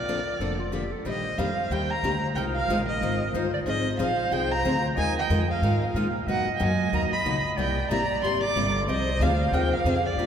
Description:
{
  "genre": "acoustic string swing (jazz manouche)",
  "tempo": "184 BPM",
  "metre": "4/4",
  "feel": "swing 59% on 8ths",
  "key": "Eb major",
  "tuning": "A4 = 440 Hz",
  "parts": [
    { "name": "warm violin", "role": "melody", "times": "0.0-10.3 s", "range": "D5 to D6", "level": "-28 LUFS", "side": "right 1 dB", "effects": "none" },
    { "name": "clear clarinet", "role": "second line", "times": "0.0-10.3 s", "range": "F4 to F5", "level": "-31 LUFS", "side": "right 2 dB", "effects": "none" },
    { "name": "upright bass", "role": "bass", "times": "0.0-10.3 s", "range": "F1 to B2", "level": "-28 LUFS", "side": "equal", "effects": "none" },
    { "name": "picked steel-string acoustic guitar", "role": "accompaniment", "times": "0.1-10.3 s", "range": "B2 to C5", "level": "-28 LUFS", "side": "left 2 dB", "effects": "none" }
  ],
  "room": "wet cathedral reverb, RT60 5.3 s",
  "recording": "recorded in a church or concert hall",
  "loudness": "-23 LUFS",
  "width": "side -8 dB against mid",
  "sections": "0.0-1.1 A section; 1.1-10.3 B section",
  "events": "none",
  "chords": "0.0 Bbmaj7; 1.1 Ebmaj9; 2.4 Ab6; 3.7 Fm7; 5.0 Bb7sus4; 6.3 Bmaj9; 7.6 C7; 8.9 Fm7/C",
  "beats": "0.07 0.40 0.72 | 1.05 1.38 1.71 2.03 | 2.36 2.69 3.01 3.34 | 3.67 3.99 4.32 4.64 | 4.97 5.30 5.62 5.95 | 6.27 6.60 6.92 7.25 | 7.58 7.90 8.23 8.55 | 8.88 9.20 9.53 9.85 | 10.18"
}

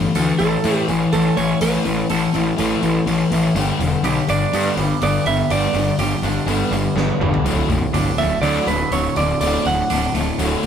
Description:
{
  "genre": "quiet-loud alternative rock",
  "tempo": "123 BPM",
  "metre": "4/4",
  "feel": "straight",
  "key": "unclear",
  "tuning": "A4 = 440 Hz",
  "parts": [
    { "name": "semi-hollow electric guitar", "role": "arpeggios", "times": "0.0-10.7 s", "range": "D2 to A4", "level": "-25 LUFS", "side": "right 7 dB", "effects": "phaser" },
    { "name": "thick fuzz guitar", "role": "riff", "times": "0.0-10.7 s", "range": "D2 to A3", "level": "-20 LUFS", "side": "left 5 dB", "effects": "distortion" },
    { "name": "fuzz picked electric bass", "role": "bass", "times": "0.0-10.7 s", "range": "B0 to A2", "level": "-22 LUFS", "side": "equal", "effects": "overdrive" },
    { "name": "big rock drum kit", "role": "drums", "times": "0.2-10.7 s", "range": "hi-hat, snare drum, toms", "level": "-28 LUFS", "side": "equal", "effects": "none" },
    { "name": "lightly driven lead guitar", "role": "melody", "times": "0.4-10.1 s", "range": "A4 to F#5", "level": "-21 LUFS", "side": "right 4 dB", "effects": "none" }
  ],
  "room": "light reverb",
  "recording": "band playing live in one room",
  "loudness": "-16 LUFS",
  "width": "side -8 dB against mid",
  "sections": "0.0-10.7 A section",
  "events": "drum fill 7.0-7.5",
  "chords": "0.0 A5; 3.6 G; 7.5 D",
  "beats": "0.16 0.64 1.13 | 1.61 2.10 2.58 3.07 | 3.56 4.04 4.53 5.01 | 5.50 5.99 6.48 6.96 | 7.45 7.94 8.43 8.92 | 9.41 9.90 10.39"
}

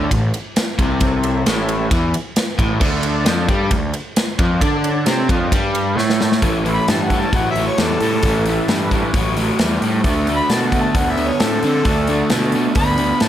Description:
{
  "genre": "blues rock power trio and southern rock",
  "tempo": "133 BPM",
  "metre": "4/4",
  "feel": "straight",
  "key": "A mixolydian",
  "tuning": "A4 = 440 Hz",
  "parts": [
    { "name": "overdriven tonewheel organ", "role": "sustained chords", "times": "0.0-12.7 s", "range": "D4 to D5", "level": "-28 LUFS", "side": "right 3 dB", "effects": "slow rotary speaker, chorus vibrato, plate reverb" },
    { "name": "crunchy overdriven guitar", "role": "riff", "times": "0.0-13.3 s", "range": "A2 to D4", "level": "-20 LUFS", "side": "equal", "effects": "none" },
    { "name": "fuzz picked electric bass", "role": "bass", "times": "0.0-13.3 s", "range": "A1 to D3", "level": "-21 LUFS", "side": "equal", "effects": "overdrive" },
    { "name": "big rock drum kit", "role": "drums", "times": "0.1-13.3 s", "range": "crash cymbal, hi-hat, kick drum, ride cymbal, snare drum", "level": "-20 LUFS", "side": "equal", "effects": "none" },
    { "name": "mellow harmonica", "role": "melody", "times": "6.7-13.3 s", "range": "A4 to B5", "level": "-21 LUFS", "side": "equal", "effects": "overdrive, slapback echo" }
  ],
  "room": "light reverb",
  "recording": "none",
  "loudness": "-15 LUFS",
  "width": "side -11 dB against mid",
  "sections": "0.0-6.4 A section; 6.4-13.3 B section",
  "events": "drum fill 6.0-6.4; harmonica solo 6.4-13.3",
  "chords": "0.0 A; 2.8 D5; 6.4 A; 10.1 D",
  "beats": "0.11 0.56 | 1.02 1.47 1.92 2.37 | 2.82 3.27 3.72 4.17 | 4.62 5.08 5.53 5.98 | 6.43 6.88 7.33 7.79 | 8.24 8.69 9.14 9.60 | 10.05 10.50 10.96 11.41 | 11.86 12.32 12.77 13.22"
}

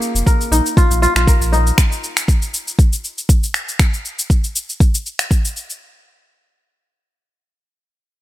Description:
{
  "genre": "afro house",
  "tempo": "119 BPM",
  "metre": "4/4",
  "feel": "swing 54% on 16ths",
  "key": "unclear",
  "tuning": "A4 = 440 Hz",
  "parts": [
    { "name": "kora", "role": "arpeggios", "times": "0.0-3.1 s", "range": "Bb3 to Bb4", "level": "-19 LUFS", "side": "left 1 dB", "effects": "sidechain pumping, low-pass filter, digital delay" },
    { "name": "electronic shaker and finger snaps", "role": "drums", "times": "0.0-5.8 s", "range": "none", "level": "-20 LUFS", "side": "equal", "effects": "none" },
    { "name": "warm sub bass", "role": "bass", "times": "0.1-1.7 s", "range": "F1 to Bb1", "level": "-16 LUFS", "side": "equal", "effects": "tube saturation, sidechain pumping" },
    { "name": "electronic kick drum", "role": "drums", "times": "0.3-5.4 s", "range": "none", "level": "-13 LUFS", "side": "equal", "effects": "none" }
  ],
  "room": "little or no reverb",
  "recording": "none",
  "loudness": "-14 LUFS",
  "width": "side -15 dB against mid",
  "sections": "0.0-5.8 A section",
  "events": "none",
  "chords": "0.0 Bb5",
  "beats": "0.27 0.77 1.27 | 1.78 2.28 2.79 3.29 | 3.79 4.30 4.80 5.31"
}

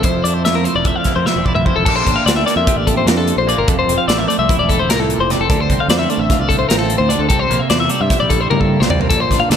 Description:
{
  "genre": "math rock and midwest emo",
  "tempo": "298 BPM (eighths)",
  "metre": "9/8",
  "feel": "straight",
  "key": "F major",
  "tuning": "A4 = 440 Hz",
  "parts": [
    { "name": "twelve-string electric guitar", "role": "accompaniment", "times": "0.0-9.6 s", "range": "F2 to C5", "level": "-20 LUFS", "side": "right 6 dB", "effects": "phaser" },
    { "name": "twelve-string electric guitar", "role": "arpeggios", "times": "0.0-9.6 s", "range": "A4 to F5", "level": "-17 LUFS", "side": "left 5 dB", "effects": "analog delay" },
    { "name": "growling fingered electric bass", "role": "bass", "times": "0.0-9.6 s", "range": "E1 to G2", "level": "-21 LUFS", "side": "equal", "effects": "overdrive" },
    { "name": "modern studio drum kit", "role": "drums", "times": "0.0-9.6 s", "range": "crash cymbal, hi-hat, kick drum, snare drum, toms", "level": "-18 LUFS", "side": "equal", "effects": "none" }
  ],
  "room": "moderate lush hall reverb, RT60 1.7 s, small room ambience",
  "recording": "big arena sound",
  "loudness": "-13 LUFS",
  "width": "side -8 dB against mid",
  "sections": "0.0-1.9 A section; 1.9-9.6 B section",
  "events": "drum fill 1.3-1.9, 8.5-9.1",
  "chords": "0.0 Fmaj7; 1.9 Bbmaj13; 3.7 Fmaj7; 5.5 Dm9; 7.3 C13",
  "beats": "| 0.04 0.24 0.44 0.65 0.85 1.05 1.25 1.46 1.66 | 1.86 2.06 2.27 2.47 2.67 2.87 3.08 3.28 3.48 | 3.68 3.88 4.08 4.29 4.49 4.69 4.89 5.09 5.29 | 5.49 5.70 5.90 6.10 6.30 6.50 6.70 6.90 7.10 | 7.30 7.50 7.70 7.90 8.11 8.30 8.51 8.71 8.91 | 9.11 9.31 9.51"
}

